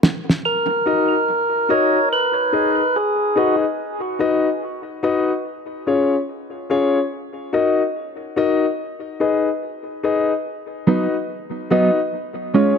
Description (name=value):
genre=reggae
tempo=72 BPM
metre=4/4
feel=swing 64% on 16ths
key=Eb minor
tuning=A4 = 441 Hz
part: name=percussive tonewheel organ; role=melody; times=0.5-3.6 s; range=Gb4 to Db5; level=-19 LUFS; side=right 2 dB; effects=overdrive, stopped rotary speaker, tape echo
part: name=dark baby grand piano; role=stabs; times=0.9-12.8 s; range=Db4 to Eb5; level=-19 LUFS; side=left 4 dB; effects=tape echo
part: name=mellow electric guitar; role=accompaniment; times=10.9-12.7 s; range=F#3 to F4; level=-18 LUFS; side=right 5 dB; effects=tremolo, tape echo
room=moderate plate reverb, RT60 2.1 s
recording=none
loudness=-17 LUFS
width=side -6 dB against mid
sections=0.4-12.8 A section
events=break 0.0-0.4, 0.4-12.8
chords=0.4 Ebm; 2.1 Abm; 3.8 B; 5.5 Db; 7.1 Ebm; 8.8 Abm; 10.5 B; 12.1 Db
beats=| 0.45 1.28 2.11 2.95 | 3.78 4.62 5.45 6.29 | 7.12 7.95 8.79 9.62 | 10.46 11.29 12.13